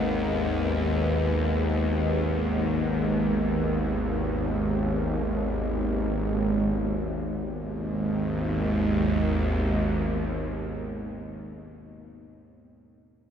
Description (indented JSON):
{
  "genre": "dark ambient drone",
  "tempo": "free time",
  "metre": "none",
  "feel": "none",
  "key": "G# minor",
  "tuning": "A4 = 442 Hz",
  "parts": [
    { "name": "deep dark ambient pad", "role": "sustained chords", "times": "0.0-11.9 s", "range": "G#3 to D#5", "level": "-29 LUFS", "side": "right 2 dB", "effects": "chorus, built-in reverb" },
    { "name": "bowed-like drone", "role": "drone", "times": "0.0-11.4 s", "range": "G#1 to D#2", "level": "-26 LUFS", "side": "equal", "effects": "built-in reverb" }
  ],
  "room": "moderate plate reverb, RT60 2.9 s",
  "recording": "none",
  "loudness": "-24 LUFS",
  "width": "side -8 dB against mid",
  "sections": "0.0-6.7 A section; 6.7-11.7 B section",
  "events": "none",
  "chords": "0.0 G#madd9",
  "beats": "free time"
}